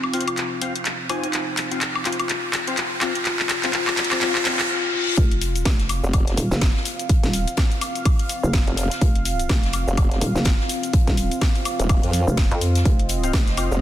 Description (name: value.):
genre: bass house.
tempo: 125 BPM.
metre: 4/4.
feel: swing 58% on 16ths.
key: unclear.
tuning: A4 = 440 Hz.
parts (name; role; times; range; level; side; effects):
marimba with medium hard mallets; melody; 0.0-5.1 s; C4 to F4; -28 LUFS; left 4 dB; dub echo.
dark analog pad; sustained chords; 0.0-13.8 s; C4 to F5; -31 LUFS; right 1 dB; chorus, sidechain pumping.
house drum kit; drums; 0.0-13.8 s; handclaps, hi-hat, shaker, snare drum, woodblock; -24 LUFS; left 1 dB; none.
riser and reverse cymbal; sound effects; 0.5-5.2 s; none; -31 LUFS; equal; none.
percussive organ stab; stabs; 0.1-4.6, 13.2-13.7 s; C4 to Ab5; -29 LUFS; left 3 dB; ensemble chorus, sidechain pumping, dub echo.
hollow knocking FM bass; bass; 5.2-13.7 s; Eb1 to F2; -23 LUFS; equal; tube saturation, sidechain pumping.
electronic kick drum; drums; 5.2-13.4 s; none; -19 LUFS; equal; none.
soft-mallet drum kit; drums; 5.2-13.7 s; hi-hat, snare drum; -36 LUFS; left 3 dB; high-pass filter on hats, high-pass filter on snare, high-pass filter on room.
formant-sweep wobble bass; bass; 6.0-13.8 s; Eb1 to F2; -22 LUFS; equal; chorus, tube saturation, sidechain pumping.
room: light reverb.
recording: dense, heavily limited modern master.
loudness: -18 LUFS.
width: side -12 dB against mid.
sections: 0.0-5.2 A section; 5.2-13.8 B section.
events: build-up 0.0-5.2; drum fill 0.0-4.7; riser 0.5-4.7; reverse cymbal 4.2-5.2; drop 5.2-13.8.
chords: 0.0 F5.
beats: 0.38 0.85 | 1.33 1.81 2.29 2.77 | 3.25 3.73 4.21 4.70 | 5.17 5.66 6.13 6.62 | 7.09 7.58 8.05 8.54 | 9.02 9.49 9.97 10.46 | 10.94 11.41 11.89 12.38 | 12.86 13.34.